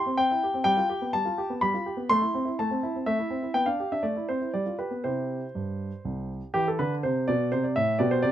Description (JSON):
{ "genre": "classical-period piano sonatina", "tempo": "124 BPM", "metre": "3/4", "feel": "straight", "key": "C major", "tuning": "A4 = 439 Hz", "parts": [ { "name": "warm grand piano", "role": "solo", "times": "0.0-8.3 s", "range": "C2 to C6", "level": "-24 LUFS", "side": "equal", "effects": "none" } ], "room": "light reverb", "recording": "none", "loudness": "-25 LUFS", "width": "side -11 dB against mid", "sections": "0.0-6.5 A section; 6.5-8.3 B section", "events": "none", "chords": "0.0 C; 0.7 G7; 2.1 Am; 3.5 G/B; 4.0 Am; 4.5 G7; 5.0 C; 7.5 Amadd11" }